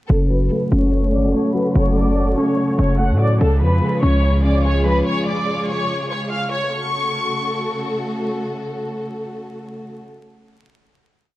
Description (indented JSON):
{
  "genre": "hip hop, drill",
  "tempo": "145 BPM",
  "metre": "4/4",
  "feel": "half-time",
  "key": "F# harmonic minor",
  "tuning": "A4 = 440 Hz",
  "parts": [
    { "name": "warm symphonic violin section", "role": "melody", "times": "0.1-7.9 s", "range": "A4 to F#6", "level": "-23 LUFS", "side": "equal", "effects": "low-pass filter, tape echo" },
    { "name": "warbly lo-fi synth keys", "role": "accompaniment", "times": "0.1-5.9 s", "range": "C#3 to C#5", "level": "-20 LUFS", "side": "left 1 dB", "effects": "chorus, low-pass filter, tape echo" },
    { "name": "warm symphonic string section", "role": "sustained chords", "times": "0.1-10.0 s", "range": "C#3 to A4", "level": "-26 LUFS", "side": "equal", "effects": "low-pass filter" },
    { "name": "hard-hitting 808-style bass", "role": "bass", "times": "0.1-5.0 s", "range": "F#1 to A2", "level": "-17 LUFS", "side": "equal", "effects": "none" }
  ],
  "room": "light reverb, small room reverb",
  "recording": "echo-heavy mix, vinyl crackle",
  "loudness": "-16 LUFS",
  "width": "side -16 dB against mid",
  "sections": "0.1-6.7 breakdown; 6.7-10.0 final chord",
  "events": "filter sweep 0.1-6.7",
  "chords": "0.1 F#m; 3.4 C#; 6.7 F#m"
}